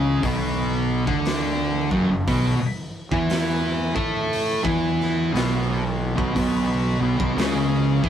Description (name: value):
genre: stoner and doom metal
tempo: 59 BPM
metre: 4/4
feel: swing 64% on 8ths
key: unclear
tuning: A4 = 440 Hz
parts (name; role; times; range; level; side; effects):
- fuzz guitar; riff; 0.0-8.1 s; F#2 to A4; -24 LUFS; right 5 dB; distortion
- thick fuzz guitar; riff; 0.0-8.1 s; F#2 to A4; -25 LUFS; left 4 dB; distortion
- fuzz fingered electric bass; bass; 0.0-8.1 s; F#1 to A2; -26 LUFS; equal; overdrive
- raw garage drum kit; drums; 0.2-8.1 s; hi-hat, kick drum, snare drum; -28 LUFS; equal; none
room: moderate studio reverb, RT60 0.5 s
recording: rough rehearsal-room recording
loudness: -20 LUFS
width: side -9 dB against mid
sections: 0.0-8.1 A section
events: none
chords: 0.0 F#5; 2.3 B5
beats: 0.23 1.25 | 2.27 3.29 4.31 5.33 | 6.35 7.37